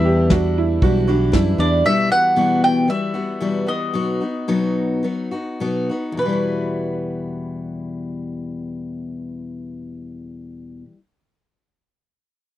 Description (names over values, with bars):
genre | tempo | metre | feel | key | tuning
acoustic folk duo or small band | 102-117 BPM | 4/4 | straight | E minor | A4 = 442 Hz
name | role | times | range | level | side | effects
mandolin | melody | 0.0-10.9 s | B4 to G5 | -21 LUFS | right 1 dB | none
picked steel-string acoustic guitar | accompaniment | 0.0-11.0 s | E2 to F#4 | -22 LUFS | left 3 dB | none
bright upright piano | arpeggios | 0.0-1.8 s | D4 to G4 | -22 LUFS | right 8 dB | none
fingered electric bass | bass | 0.0-1.8 s | B1 to F#2 | -19 LUFS | equal | none
soft brush drum kit | drums | 0.3-1.5 s | kick drum, snare drum | -17 LUFS | equal | none
room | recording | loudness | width
little or no reverb | dry, close 1970s-style studio recording | -18 LUFS | side -13 dB against mid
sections
0.0-1.8 A section; 1.8-6.2 B section; 6.2-10.9 C section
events
slowing down 1.8-6.2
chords
0.0 Em7; 1.8 Emadd9; 3.9 B; 6.2 Emadd9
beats
0.31 0.82 1.34 | 1.85 2.36 2.88 3.41 | 3.94 4.48 5.03 5.60 | 6.18 6.77 7.36 7.95 | 8.54 9.13 9.71 10.30